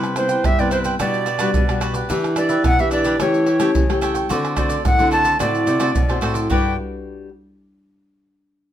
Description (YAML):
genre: samba and choro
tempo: 109 BPM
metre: 4/4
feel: straight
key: G major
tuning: A4 = 438 Hz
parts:
  - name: cavaquinho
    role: accompaniment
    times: 0.0-6.7 s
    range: D4 to G5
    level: -25 LUFS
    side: right 4 dB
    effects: none
  - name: nylon-string guitar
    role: accompaniment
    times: 0.0-7.3 s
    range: G2 to B4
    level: -25 LUFS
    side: left 4 dB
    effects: none
  - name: nylon-string guitar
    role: bass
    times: 0.0-6.8 s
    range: G2 to G3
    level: -22 LUFS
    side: equal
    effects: none
  - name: maracas, pandeiro, tamborim and surdo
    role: percussion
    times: 0.0-6.6 s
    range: none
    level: -22 LUFS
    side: right 1 dB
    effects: none
  - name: alto recorder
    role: melody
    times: 0.2-6.8 s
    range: C5 to A5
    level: -20 LUFS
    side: equal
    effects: none
room: moderate studio reverb, RT60 0.6 s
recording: minimal, uncompressed stereo recording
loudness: -16 LUFS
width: side -11 dB against mid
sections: 0.0-6.5 A section; 6.5-8.7 B section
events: none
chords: 0.0 Cmaj7; 1.0 Gmaj7/B; 2.1 Em7; 3.2 A7/E; 4.3 D7; 6.5 Gmaj7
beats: 0.45 1.00 1.55 | 2.10 2.65 3.20 3.75 | 4.30 4.85 5.40 5.95 | 6.50 7.05